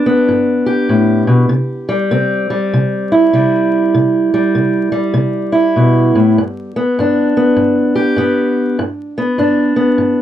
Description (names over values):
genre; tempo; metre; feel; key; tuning
blues; 99 BPM; 4/4; swing 63% on 8ths; G major; A4 = 440 Hz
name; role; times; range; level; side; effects
fingerpicked steel-string acoustic guitar; solo; 0.0-10.2 s; G2 to G4; -11 LUFS; equal; none
room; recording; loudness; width
moderate booth ambience, RT60 0.3 s; dry, close 1970s-style studio recording, vinyl crackle; -11 LUFS; side -11 dB against mid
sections
0.0-10.2 A section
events
none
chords
0.0 G; 1.5 C; 6.4 G